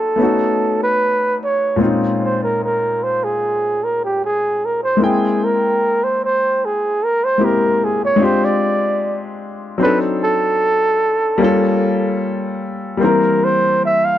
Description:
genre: soul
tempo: 75 BPM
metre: 4/4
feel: straight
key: unclear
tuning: A4 = 440 Hz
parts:
  - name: breathy flugelhorn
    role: melody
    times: 0.0-14.2 s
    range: G4 to F5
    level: -17 LUFS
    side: right 1 dB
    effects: none
  - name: clear grand piano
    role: accompaniment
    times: 0.0-14.2 s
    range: Bb2 to G5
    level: -18 LUFS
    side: left 3 dB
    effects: none
room: small room ambience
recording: dry, close 1970s-style studio recording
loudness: -14 LUFS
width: side -12 dB against mid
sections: 0.0-14.2 A section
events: flugelhorn solo 0.0-14.2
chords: 0.2 B9; 1.8 Bbm11; 5.0 C7b13; 8.2 Fm69; 9.8 D7b9; 11.4 Gm7b5; 13.0 C7

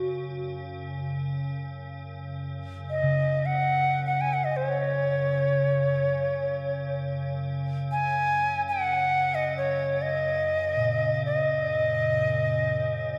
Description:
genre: world meditative, free-time meditation music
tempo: free time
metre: none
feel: none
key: F# major pentatonic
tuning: A4 = 440 Hz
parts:
  - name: Native American-style cedar flute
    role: melody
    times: 0.0-13.2 s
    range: F#4 to G#5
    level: -28 LUFS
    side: equal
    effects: analog delay
  - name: icy glass pad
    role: drone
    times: 0.0-13.2 s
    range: F#2 to C#3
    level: -36 LUFS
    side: equal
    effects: chorus, built-in reverb
  - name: quartz singing bowl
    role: texture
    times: 0.0-13.2 s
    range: A#2 to C#3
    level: -34 LUFS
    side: equal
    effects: none
room: wet plate reverb, RT60 2.7 s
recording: echo-heavy mix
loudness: -26 LUFS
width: mono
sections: 0.0-2.2 A section; 2.2-13.2 A section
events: none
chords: none

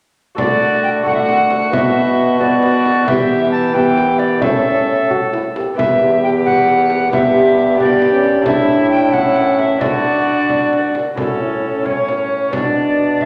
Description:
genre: classical, renaissance-style consort dance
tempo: 89 BPM (dotted quarters)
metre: 6/8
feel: straight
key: D major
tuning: A4 = 441 Hz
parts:
  - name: lute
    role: accompaniment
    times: 0.3-13.3 s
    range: E2 to C#5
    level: -26 LUFS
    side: equal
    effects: none
  - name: mellow tenor recorder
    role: melody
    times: 0.4-13.3 s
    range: A4 to A5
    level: -19 LUFS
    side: equal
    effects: none
  - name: rich viola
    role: second line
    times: 0.4-13.3 s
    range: C#4 to A4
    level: -22 LUFS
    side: equal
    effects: none
  - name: dark trombone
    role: accompaniment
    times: 0.4-13.3 s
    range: A3 to G4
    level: -21 LUFS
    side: equal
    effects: none
  - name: brilliant trombone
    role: bass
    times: 0.4-13.3 s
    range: E2 to E3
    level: -24 LUFS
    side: equal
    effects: none
  - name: frame drum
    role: percussion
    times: 0.4-13.3 s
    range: none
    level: -27 LUFS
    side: equal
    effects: none
room: wet recital hall reverb, RT60 1.6 s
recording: none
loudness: -15 LUFS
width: mono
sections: 0.4-11.2 A section; 11.2-13.3 B section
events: none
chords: 0.4 D; 1.7 Bm; 3.1 Em; 4.4 A; 5.8 Em; 7.1 G; 8.5 Asus4; 9.1 A; 9.8 D; 11.2 A; 12.5 Bm

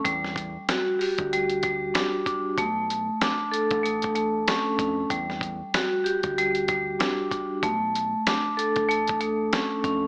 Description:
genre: hip hop, boom-bap hip-hop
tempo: 95 BPM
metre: 4/4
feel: swing 60% on 16ths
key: B minor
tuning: A4 = 439 Hz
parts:
  - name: vibraphone with medium hard mallets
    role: accompaniment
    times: 0.0-10.1 s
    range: G3 to A4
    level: -27 LUFS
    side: equal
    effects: high-pass filter, low-pass filter
  - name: deep dub fingered electric bass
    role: bass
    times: 0.1-10.1 s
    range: A1 to E#2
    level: -41 LUFS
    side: equal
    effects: none
  - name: dusty soul sampler-style drum kit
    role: drums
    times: 0.1-10.0 s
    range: hi-hat, kick drum, snare drum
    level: -31 LUFS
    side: equal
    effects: none
room: moderate echo chamber reverb, RT60 2.0 s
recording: AM radio sound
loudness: -26 LUFS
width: mono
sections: 0.0-10.1 A section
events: none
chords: 0.1 Em9; 2.6 Bm9; 5.1 Em9; 7.6 Bm9

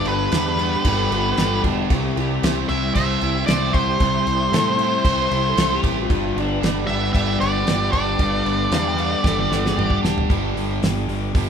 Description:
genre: classic rock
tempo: 114 BPM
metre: 4/4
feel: straight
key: unclear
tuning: A4 = 443 Hz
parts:
  - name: octave-fuzz lead guitar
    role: melody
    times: 0.0-10.0 s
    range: B4 to E5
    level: -23 LUFS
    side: equal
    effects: distortion
  - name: soft string machine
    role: sustained chords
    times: 0.0-10.3 s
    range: D4 to E5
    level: -31 LUFS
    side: equal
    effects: ensemble chorus
  - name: overdriven semi-hollow guitar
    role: riff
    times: 0.0-11.5 s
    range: G2 to C5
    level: -26 LUFS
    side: right 8 dB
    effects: none
  - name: sludgy distorted guitar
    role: riff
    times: 0.0-11.5 s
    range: G2 to G4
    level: -26 LUFS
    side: left 7 dB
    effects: overdrive
  - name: growling picked electric bass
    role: bass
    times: 0.1-11.5 s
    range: E1 to A2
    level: -26 LUFS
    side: equal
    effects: overdrive
  - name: damped 70s drum kit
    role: drums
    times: 0.1-11.5 s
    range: crash cymbal, hi-hat, kick drum, snare drum, toms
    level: -23 LUFS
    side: right 1 dB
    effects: none
  - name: overdriven slide guitar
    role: second line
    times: 0.9-10.3 s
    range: B3 to G5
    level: -28 LUFS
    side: left 5 dB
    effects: none
room: moderate large studio reverb, RT60 1.2 s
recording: band playing live in one room, faint mains hum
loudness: -17 LUFS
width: side -7 dB against mid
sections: 0.0-10.3 A section; 10.3-11.5 B section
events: drum fill 9.2-10.3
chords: 0.0 G; 1.9 C; 6.1 G

